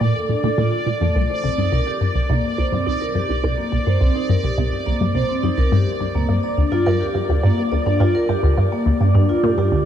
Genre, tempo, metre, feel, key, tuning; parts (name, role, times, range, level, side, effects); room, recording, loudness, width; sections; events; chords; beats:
ambient, sequencer-driven space music; 105 BPM; 4/4; straight; C dorian; A4 = 440 Hz
vibraphone with medium mallets; arpeggios; 0.0-9.7 s; A3 to D5; -22 LUFS; moving between left 3 dB and right 5 dB; auto-pan, ping-pong delay
resonant blip pluck; riff; 0.0-9.9 s; C2 to Bb2; -18 LUFS; equal; phaser, cassette tape, ping-pong delay
bubbling stepped-filter texture; texture; 0.0-9.9 s; D5; -26 LUFS; equal; chorus, built-in reverb
moderate huge ambient reverb, RT60 8.7 s; in a vast, echoing space; -17 LUFS; side -10 dB against mid
0.0-9.9 A section
fade-in on vibraphone 0.0-9.9; filter sweep on synth arpeggio sound 0.0-9.9
0.0 Bbmaj7; 1.1 C7(no3); 5.7 Gm
0.01 0.58 | 1.15 1.72 2.29 2.86 | 3.44 4.01 4.58 5.15 | 5.72 6.29 6.86 7.43 | 8.01 8.58 9.15 9.72